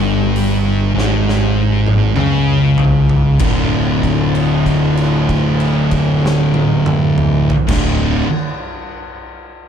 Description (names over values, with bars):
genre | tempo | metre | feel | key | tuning
stoner and doom metal | 48 BPM | 4/4 | straight | unclear | A4 = 441 Hz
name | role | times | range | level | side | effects
thick fuzz guitar | riff | 0.0-8.3 s | D2 to D3 | -16 LUFS | left 6 dB | distortion
thick fuzz guitar | riff | 0.0-8.3 s | D2 to D3 | -16 LUFS | right 6 dB | distortion
fuzz picked electric bass | bass | 0.0-8.2 s | D1 to C#2 | -20 LUFS | equal | overdrive
oversized low-tuned drum kit | drums | 0.4-8.0 s | crash cymbal, hi-hat, kick drum, snare drum, toms | -20 LUFS | equal | none
room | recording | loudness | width
light reverb | dark, warm production | -12 LUFS | side -8 dB against mid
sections
0.0-3.4 A section; 3.4-8.4 B section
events
slowing down 0.0-3.4; drum fill 0.9-3.4; held note 3.4-7.7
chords
0.0 G#maj7(no3)/G; 3.4 D5